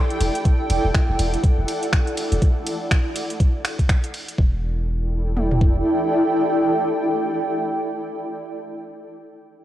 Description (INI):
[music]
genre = minimal techno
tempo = 122 BPM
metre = 4/4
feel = swing 59% on 16ths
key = E minor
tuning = A4 = 439 Hz
[part]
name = granular cloud pad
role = texture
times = 0.0-8.0 s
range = E4 to G5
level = -23 LUFS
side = equal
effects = built-in reverb, sidechain pumping
[part]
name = garage drum kit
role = drums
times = 0.1-4.4 s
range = finger snaps, hi-hat, ride cymbal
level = -28 LUFS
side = equal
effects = studio reverb
[part]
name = punchy sub bass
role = bass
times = 0.2-5.8 s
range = E1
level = -22 LUFS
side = equal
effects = tube saturation, sidechain pumping
[part]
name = garage drum kit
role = drums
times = 0.5-5.8 s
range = kick drum, toms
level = -18 LUFS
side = equal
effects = studio reverb
[sound]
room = light reverb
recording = home recording on cassette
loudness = -18 LUFS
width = side -13 dB against mid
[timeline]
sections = 0.0-4.4 A section; 4.4-8.3 B section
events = drop 0.0-4.4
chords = 0.0 Esus4